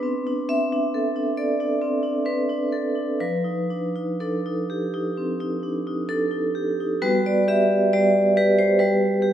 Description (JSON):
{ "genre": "classical, contemporary piece for solo vibraphone", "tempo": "60-71 BPM", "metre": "4/4", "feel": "rubato", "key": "G major", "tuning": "A4 = 442 Hz", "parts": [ { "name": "vibraphone with medium hard mallets", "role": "solo", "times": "0.0-9.3 s", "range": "F3 to E5", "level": "-20 LUFS", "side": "equal", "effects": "none" } ], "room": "wet scoring stage reverb, RT60 1.9 s", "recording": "recorded in a church or concert hall", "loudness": "-20 LUFS", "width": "side -10 dB against mid", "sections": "0.0-7.0 A section; 7.0-9.3 B section", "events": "none", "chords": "0.0 Bm7; 3.2 F9; 7.0 Gmaj7" }